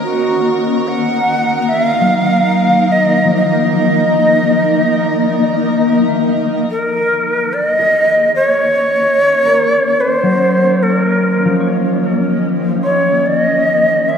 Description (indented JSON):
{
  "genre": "ambient",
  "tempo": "73 BPM",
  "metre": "4/4",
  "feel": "straight",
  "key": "Eb dorian",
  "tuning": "A4 = 440 Hz",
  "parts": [
    { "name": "breathy bright shakuhachi", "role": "melody", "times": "0.0-14.2 s", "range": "Gb4 to Gb5", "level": "-14 LUFS", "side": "right 1 dB", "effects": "analog delay" },
    { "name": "shimmering ambient pad", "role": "sustained chords", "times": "0.0-14.2 s", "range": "Eb3 to Eb5", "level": "-17 LUFS", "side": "left 1 dB", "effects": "chorus, built-in reverb" },
    { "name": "concert harp", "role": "arpeggios", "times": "0.0-14.2 s", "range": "F3 to C6", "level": "-18 LUFS", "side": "left 1 dB", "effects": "analog delay" },
    { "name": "clear studio violin section", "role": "texture", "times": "0.0-6.7 s", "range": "Bb4 to Bb5", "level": "-27 LUFS", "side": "left 2 dB", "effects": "none" }
  ],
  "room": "wet spring reverb, RT60 2.7 s",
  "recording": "echo-heavy mix",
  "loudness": "-11 LUFS",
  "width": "side -7 dB against mid",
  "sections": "0.0-6.7 A section; 6.7-14.2 A section",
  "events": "fade-in on ambient pad 6.7-14.2",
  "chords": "0.0 Ebm7"
}